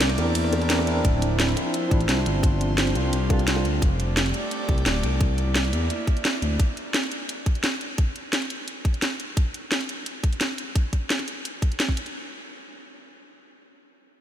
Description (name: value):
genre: liquid drum and bass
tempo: 173 BPM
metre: 4/4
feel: straight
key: unclear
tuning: A4 = 440 Hz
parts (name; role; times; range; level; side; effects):
- bright concert grand piano; melody; 0.0-0.7 s; D5; -39 LUFS; equal; none
- tine electric piano; accompaniment; 0.0-3.8 s; F3 to Bb4; -29 LUFS; equal; medium tremolo, vintage 12-bit sampler grit, low-pass filter, ping-pong delay
- airy breathy pad; sustained chords; 0.0-6.6 s; F3 to D5; -31 LUFS; right 1 dB; chorus, sidechain pumping
- smooth gliding synth bass; bass; 0.0-6.6 s; D1 to E2; -24 LUFS; equal; none
- garage drum kit; drums; 0.0-12.1 s; hi-hat, ride cymbal, rim click, snare drum; -26 LUFS; equal; overdrive, studio reverb
- bongos; percussion; 0.2-3.6 s; none; -38 LUFS; left 5 dB; none
- electronic kick drum; drums; 1.0-12.0 s; none; -21 LUFS; equal; overdrive, studio reverb
room: moderate huge ambient reverb, RT60 6.0 s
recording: dreamy mix soaked in reverb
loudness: -21 LUFS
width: side -10 dB against mid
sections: 0.0-1.0 A section; 1.0-12.1 B section; 12.1-14.2 C section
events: drop 0.0-1.0; kick drops out 0.4-1.0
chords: 0.0 C9; 1.0 Dm9; 2.4 G7sus4; 3.8 F69; 5.2 C9; 6.6 N.C.